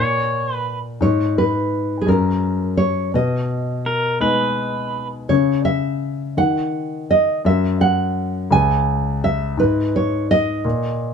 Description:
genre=acoustic folk-pop ballad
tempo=56 BPM (dotted quarters)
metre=6/8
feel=straight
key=unclear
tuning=A4 = 441 Hz
part: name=nylon-string guitar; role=melody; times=0.0-11.1 s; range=G#4 to G#5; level=-20 LUFS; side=right 3 dB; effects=none
part: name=pedal steel guitar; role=second line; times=0.0-5.1 s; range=A#4 to C#5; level=-20 LUFS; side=right 1 dB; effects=none
part: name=warm concert grand piano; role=accompaniment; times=0.0-11.1 s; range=C#2 to D#4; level=-20 LUFS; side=left 3 dB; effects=none
room=moderate studio reverb, RT60 0.5 s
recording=minimal, uncompressed stereo recording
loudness=-17 LUFS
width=side -6 dB against mid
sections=0.0-11.1 A section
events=none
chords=0.0 N.C.; 3.1 B6; 5.3 N.C.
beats=| 1.00 2.07 | 3.14 4.21 | 5.29 6.37 | 7.45 8.52 | 9.58 10.64

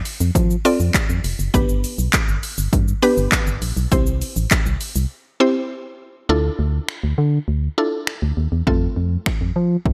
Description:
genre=dance-pop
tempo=101 BPM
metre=4/4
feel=straight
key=unclear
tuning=A4 = 440 Hz
part: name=house drum kit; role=drums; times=0.1-9.9 s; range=finger snaps, handclaps, hi-hat, kick drum, shaker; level=-22 LUFS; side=equal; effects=gated reverb
part: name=organ-like FM bass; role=bass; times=0.2-9.9 s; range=F1 to F3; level=-22 LUFS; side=equal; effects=sidechain pumping
part: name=mallet-like synth pluck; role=accompaniment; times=0.6-9.3 s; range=A3 to D5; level=-22 LUFS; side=equal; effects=chorus, sidechain pumping
room=light reverb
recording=bright 1980s-style digital production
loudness=-20 LUFS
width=mono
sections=0.0-6.3 A section; 6.3-9.9 B section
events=break 5.1-6.3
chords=0.0 F; 1.5 G; 3.9 C; 6.3 Dmadd9; 8.7 F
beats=0.35 0.95 | 1.54 2.13 2.73 3.32 | 3.92 4.51 5.11 5.70 | 6.29 6.89 7.48 8.07 | 8.67 9.26 9.86

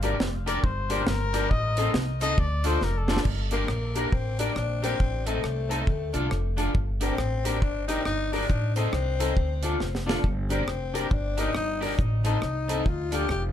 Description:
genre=ska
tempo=137 BPM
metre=4/4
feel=swing 61% on 8ths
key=G minor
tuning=A4 = 440 Hz
part: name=electric guitar at the edge of break-up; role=accompaniment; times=0.0-13.2 s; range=C4 to Eb5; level=-32 LUFS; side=right 1 dB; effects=lush chorus
part: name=bright upright piano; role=stabs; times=0.0-13.2 s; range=C4 to Bb4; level=-34 LUFS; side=left 6 dB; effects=none
part: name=upright bass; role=bass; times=0.0-13.5 s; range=F1 to D2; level=-28 LUFS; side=equal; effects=none
part: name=deep reggae drum kit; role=drums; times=0.0-13.4 s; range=crash cymbal, hi-hat, kick drum, rim click, snare drum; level=-28 LUFS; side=equal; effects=none
part: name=warm trumpet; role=melody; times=0.5-3.3 s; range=A4 to Eb5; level=-31 LUFS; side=left 4 dB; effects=tape echo
part: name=growling tenor saxophone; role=melody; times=3.5-13.4 s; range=A3 to G4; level=-31 LUFS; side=left 4 dB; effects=tape echo
room=light reverb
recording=lossy compression artefacts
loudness=-24 LUFS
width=side -10 dB against mid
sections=0.0-3.3 A section; 3.3-13.5 B section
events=trumpet solo 0.0-3.3; drum fill 2.8-3.3, 9.8-10.2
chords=0.0 Gm; 1.5 Adim; 2.4 Dm; 3.3 Gm; 5.0 Adim; 5.9 Dm; 6.7 Gm; 8.5 Adim; 9.4 Dm; 10.2 Gm; 12.0 Adim; 12.9 Dm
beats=0.20 0.64 1.07 | 1.51 1.95 2.38 2.82 | 3.25 3.69 4.13 4.57 | 5.00 5.44 5.88 6.31 | 6.75 7.18 7.62 8.06 | 8.49 8.93 9.37 9.80 | 10.24 10.68 11.11 11.55 | 11.99 12.42 12.86 13.30

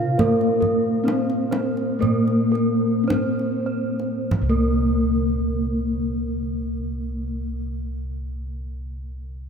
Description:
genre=Javanese gamelan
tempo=46-74 BPM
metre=4/4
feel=straight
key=unclear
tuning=A4 = 443 Hz
part: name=gamelan-type bronze metallophone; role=melody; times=0.0-7.9 s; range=Bb3-40c to F4-20c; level=-24 LUFS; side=left 2 dB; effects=none
part: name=gamelan-type bronze metallophone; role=accompaniment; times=0.0-7.9 s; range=C3 to Bb3-40c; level=-26 LUFS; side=right 2 dB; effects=none
part: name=gamelan-type bronze metallophone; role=arpeggios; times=0.0-7.9 s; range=Bb4-40c to F5-20c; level=-31 LUFS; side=right 2 dB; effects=none
part: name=gamelan-type bossed gongs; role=bass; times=0.0-7.8 s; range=C2 to Bb4-40c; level=-26 LUFS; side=right 1 dB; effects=none
part: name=gamelan-type bossed gongs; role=arpeggios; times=0.2-7.9 s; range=Bb4-40c to C5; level=-32 LUFS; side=left 6 dB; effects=none
part: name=kendang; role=percussion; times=0.2-4.9 s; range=none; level=-29 LUFS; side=right 2 dB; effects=none
room=moderate cathedral reverb, RT60 6.0 s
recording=in a vast, echoing space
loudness=-20 LUFS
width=side -6 dB against mid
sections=0.0-4.3 A section; 4.3-9.5 B section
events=slowing down 0.0-4.3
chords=none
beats=| 0.19 1.06 2.02 3.09 | 4.30 5.60 6.90

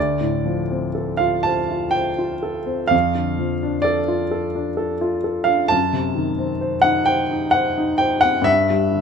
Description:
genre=classical, romantic nocturne for solo piano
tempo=60-68 BPM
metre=3/4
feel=rubato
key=unclear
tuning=A4 = 439 Hz
part: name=warm grand piano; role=solo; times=0.0-9.0 s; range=D2 to A5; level=-18 LUFS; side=equal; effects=none
room=moderate stone room reverb, RT60 1.3 s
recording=close, detailed microphones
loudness=-18 LUFS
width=side -6 dB against mid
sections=0.0-9.0 A section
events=none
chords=0.0 Dm7; 2.9 Dm/F; 5.7 F#dim7; 8.5 G5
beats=0.96 1.96 | 2.93 3.86 4.79 | 5.72 6.61 7.55 | 8.48

